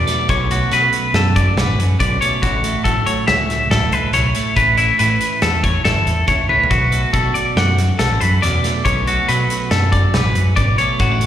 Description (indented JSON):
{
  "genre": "math rock and midwest emo",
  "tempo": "140 BPM",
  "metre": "5/4",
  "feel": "straight",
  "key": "B minor",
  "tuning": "A4 = 440 Hz",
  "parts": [
    { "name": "twelve-string electric guitar", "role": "accompaniment", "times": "0.0-11.3 s", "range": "F#2 to E4", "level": "-23 LUFS", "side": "right 7 dB", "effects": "slapback echo" },
    { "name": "twangy electric guitar", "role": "arpeggios", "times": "0.0-11.3 s", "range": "E4 to F#5", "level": "-17 LUFS", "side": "left 3 dB", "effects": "digital delay, slapback echo" },
    { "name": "picked electric bass", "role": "bass", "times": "0.0-11.3 s", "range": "E1 to B2", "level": "-18 LUFS", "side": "equal", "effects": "none" },
    { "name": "loose indie drum kit", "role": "drums", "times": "0.1-11.3 s", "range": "hi-hat, kick drum, snare drum, toms", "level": "-22 LUFS", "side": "equal", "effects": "none" }
  ],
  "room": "little or no reverb",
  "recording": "live gig heard through the venue's PA, recital hall reverb",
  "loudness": "-14 LUFS",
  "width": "side -10 dB against mid",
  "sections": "0.0-11.3 A section",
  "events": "drum fill 6.5",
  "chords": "0.0 Bm9; 2.4 F#m7/A; 4.6 Aadd9; 6.7 Bm9"
}